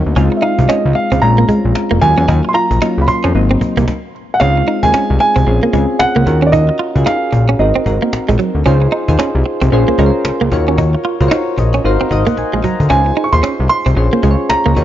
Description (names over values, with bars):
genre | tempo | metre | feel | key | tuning
R&B, new jack swing | 113 BPM | 4/4 | swing 60% on 16ths | Db major | A4 = 440 Hz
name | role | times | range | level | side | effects
soft electric-piano-like synth keys | accompaniment | 0.0-14.8 s | Gb3 to Bb5 | -17 LUFS | left 1 dB | chorus
fat analog bass | bass | 0.0-14.8 s | F1 to F2 | -14 LUFS | left 1 dB | none
cajon | drums | 0.1-14.8 s | none | -21 LUFS | left 1 dB | none
direct-recorded clean electric guitar | riff | 0.2-14.8 s | Gb3 to F4 | -18 LUFS | right 3 dB | analog chorus
dark baby grand piano | melody | 0.4-8.3, 12.9-14.8 s | D5 to Db6 | -16 LUFS | right 2 dB | none
room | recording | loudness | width
small room ambience | nothing above 7.5 kHz | -11 LUFS | side -12 dB against mid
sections
0.0-4.4 A section; 4.4-14.8 B section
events
stop 3.9-4.4; synth keys fill 11.3-12.9; drum fill 12.4-12.9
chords
0.2 Dbmaj7; 1.2 Bbm7; 2.0 Ebm9; 3.3 Ab9; 4.4 Dbmaj7; 5.5 Bbm7; 6.3 Ebm9; 7.6 Ab9; 8.7 Dbmaj7; 9.7 Bbm7; 10.5 Ebm9; 11.8 Ab9; 12.9 Dbmaj7; 14.0 Bbm7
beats
| 0.16 0.69 1.22 1.75 | 2.29 2.82 3.35 3.88 | 4.41 4.94 5.47 6.00 | 6.53 7.06 7.59 8.12 | 8.66 9.19 9.72 10.25 | 10.78 11.31 11.84 12.37 | 12.90 13.44 13.97 14.50